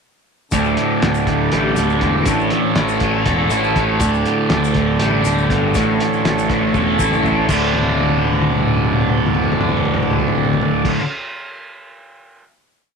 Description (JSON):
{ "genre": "psychedelic rock", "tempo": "241 BPM (eighths)", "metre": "7/8", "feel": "straight", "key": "D major", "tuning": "A4 = 437 Hz", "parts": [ { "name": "combo organ", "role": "sustained chords", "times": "0.5-10.9 s", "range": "A3 to D5", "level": "-24 LUFS", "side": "right 11 dB", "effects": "none" }, { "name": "fuzz guitar", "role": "riff", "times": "0.5-11.0 s", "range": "D2 to A4", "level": "-17 LUFS", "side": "equal", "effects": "distortion, phaser" }, { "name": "fuzz picked electric bass", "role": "bass", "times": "0.5-10.9 s", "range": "D1 to A1", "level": "-23 LUFS", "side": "left 1 dB", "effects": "overdrive" }, { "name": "hand-pumped harmonium", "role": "drone", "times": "0.5-10.9 s", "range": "D2 to D3", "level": "-26 LUFS", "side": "left 2 dB", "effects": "none" }, { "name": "cloth-damped thuddy drum kit", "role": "drums", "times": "0.5-12.4 s", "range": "crash cymbal, hi-hat, kick drum, snare drum, toms", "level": "-22 LUFS", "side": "left 1 dB", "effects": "none" }, { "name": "tube shaker", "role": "percussion", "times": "0.5-10.9 s", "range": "none", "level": "-34 LUFS", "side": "left 18 dB", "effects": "none" } ], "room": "light reverb", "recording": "1960s-style stereo with parts hard left and right", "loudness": "-14 LUFS", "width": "side -5 dB against mid", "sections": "0.5-7.5 groove; 7.5-11.0 final chord", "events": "drum fill 6.7-7.5, 7.7-10.9", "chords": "0.5 Dsus4; 2.3 A; 4.0 Dsus4; 5.7 A; 7.5 D", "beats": "| 0.53 0.78 1.02 1.27 1.52 1.77 2.02 | 2.27 2.52 2.77 3.02 3.26 3.51 3.76 | 4.01 4.26 4.51 4.75 5.00 5.25 5.50 | 5.75 6.00 6.25 6.50 6.74 6.99 7.24 | 7.49 7.74 7.99 8.24 8.48 8.73 8.98 | 9.23 9.48 9.73 9.98 10.23 10.48 10.73" }